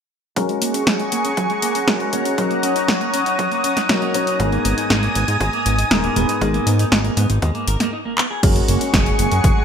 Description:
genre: italo disco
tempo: 119 BPM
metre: 4/4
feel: straight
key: G# minor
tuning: A4 = 441 Hz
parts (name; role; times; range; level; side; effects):
- lush unison pad; sustained chords; 0.4-9.6 s; G#4 to D#6; -22 LUFS; equal; chorus
- clean electric guitar; arpeggios; 0.4-9.6 s; F#3 to A#4; -25 LUFS; right 2 dB; low-pass filter, ping-pong delay
- dark baby grand piano; stabs; 0.4-9.6 s; G#2 to C#5; -24 LUFS; left 3 dB; wide subtle chorus, low-pass filter, ping-pong delay
- electronic kick drum; drums; 0.4-9.5 s; none; -20 LUFS; equal; high-pass filter on kick
- house drum kit; drums; 0.4-9.5 s; crash cymbal, handclaps, hi-hat, snare drum; -21 LUFS; equal; none
- fat analog bass; bass; 4.4-9.5 s; D#1 to G#2; -20 LUFS; equal; tube saturation
room: moderate plate reverb, RT60 1.3 s, digital ambience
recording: bright 1980s-style digital production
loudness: -16 LUFS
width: side -7 dB against mid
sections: 0.4-8.4 A section; 8.4-9.6 B section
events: filter sweep on clean electric guitar 0.4-8.4, 8.4-9.6; drum fill 8.2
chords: 0.4 F#add9; 2.4 D#m7; 4.4 G#madd9; 8.4 F#add9

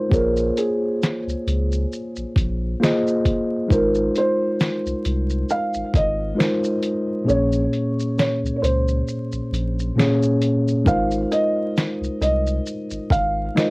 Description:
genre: lo-fi hip hop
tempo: 67 BPM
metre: 4/4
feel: swing 56% on 16ths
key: Bb minor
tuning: A4 = 441 Hz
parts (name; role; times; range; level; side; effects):
- felt-muted upright piano; melody; 0.0-13.7 s; Ab4 to F5; -24 LUFS; right 1 dB; cassette tape
- mellow tine electric piano; accompaniment; 0.0-13.7 s; Bb2 to Eb5; -22 LUFS; equal; medium stereo tremolo, cassette tape
- soft dub sub bass; bass; 0.1-13.5 s; Ab1 to Db2; -24 LUFS; equal; none
- dusty soul sampler-style drum kit; drums; 0.1-13.7 s; hi-hat, kick drum, shaker, snare drum; -22 LUFS; equal; overdrive, cassette tape
room: light reverb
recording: home recording on cassette, vinyl crackle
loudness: -18 LUFS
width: side -25 dB against mid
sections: 0.0-13.7 A section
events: kick muted 7.3-10.9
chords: 0.1 Bbm9; 3.7 Ab6; 7.3 Bbm9; 10.9 Ab6

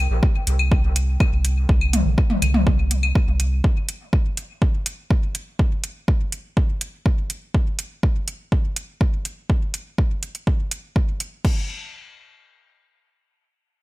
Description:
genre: dub techno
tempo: 123 BPM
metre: 4/4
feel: straight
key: unclear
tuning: A4 = 440 Hz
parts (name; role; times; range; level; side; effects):
- round analog bass; bass; 0.0-3.6 s; Bb1 to C2; -20 LUFS; equal; tube saturation, sidechain pumping
- electronic kick drum; drums; 0.2-11.5 s; none; -19 LUFS; equal; overdrive, studio reverb
- deep house drum kit; drums; 0.5-11.5 s; crash cymbal, hi-hat; -26 LUFS; right 2 dB; overdrive, studio reverb
- electronic claves and toms; percussion; 0.6-3.1 s; none; -24 LUFS; left 2 dB; sidechain pumping on perc, studio reverb, sidechain pumping on toms, dub echo
room: little or no reverb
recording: bright 1980s-style digital production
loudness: -19 LUFS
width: side -18 dB against mid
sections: 0.0-11.4 A section; 11.4-13.8 B section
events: none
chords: none

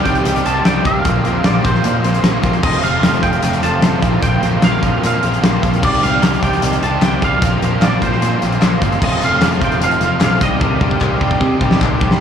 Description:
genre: indie rock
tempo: 151 BPM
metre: 4/4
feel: straight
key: C dorian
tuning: A4 = 441 Hz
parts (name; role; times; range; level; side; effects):
- twangy electric guitar; melody; 0.0-11.8 s; C5 to A5; -20 LUFS; right 2 dB; ensemble chorus, diffuse ambient delay
- combo organ; sustained chords; 0.0-12.2 s; G4 to D6; -29 LUFS; left 2 dB; none
- overdriven electric guitar; riff; 0.0-12.2 s; F2 to G4; -21 LUFS; left 6 dB; none
- overdriven electric guitar; riff; 0.0-12.2 s; F2 to G4; -22 LUFS; right 7 dB; ensemble chorus, diffuse ambient delay
- growling fingered electric bass; bass; 0.1-12.2 s; F1 to C3; -19 LUFS; equal; overdrive
- big rock drum kit; drums; 0.1-12.2 s; crash cymbal, hi-hat, kick drum, snare drum; -17 LUFS; left 1 dB; none
- group handclap; percussion; 6.2-11.9 s; none; -30 LUFS; left 8 dB; none
room: moderate huge ambient reverb, RT60 8.7 s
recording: dreamy mix soaked in reverb, studio reverb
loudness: -12 LUFS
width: side -8 dB against mid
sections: 0.0-12.2 A section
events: drum fill 10.6-12.2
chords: 0.0 Cmadd9; 1.1 Bbsus2; 2.6 F; 4.0 Bbsus2; 5.8 Cmadd9; 7.4 Bbsus2; 9.0 F; 10.4 Cmadd9

